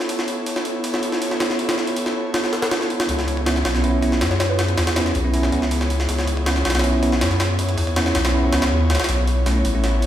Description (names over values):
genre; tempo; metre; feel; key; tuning
drum and bass, jungle; 160 BPM; 4/4; straight; C# minor; A4 = 440 Hz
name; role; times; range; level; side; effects
airy breathy pad; sustained chords; 0.0-10.1 s; B3 to C#5; -25 LUFS; equal; chorus, vintage 12-bit sampler grit
jungle sampler-style drum kit; drums; 0.0-10.1 s; hi-hat, kick drum, snare drum; -22 LUFS; equal; high-pass filter on hats, high-pass filter on snare, high-pass filter on kick, high-pass filter on room
saturated sub bass; bass; 3.1-10.1 s; A1 to F#2; -20 LUFS; equal; none
bell-like tine electric piano; stabs; 3.5-9.8 s; A3 to E4; -24 LUFS; right 2 dB; low-pass filter, dub echo
hollow square pluck; melody; 4.3-4.8 s; B4 to C#5; -30 LUFS; equal; chorus, dub echo
room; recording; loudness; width
wet plate reverb, RT60 1.5 s; played on a big sound system in a bare room, stone room reverb; -18 LUFS; side -11 dB against mid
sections
0.0-3.1 A section; 3.1-10.1 B section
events
build-up 3.1-10.1; drum fill 9.1-10.1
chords
0.0 B9sus4; 3.1 C#m7; 9.1 B9sus4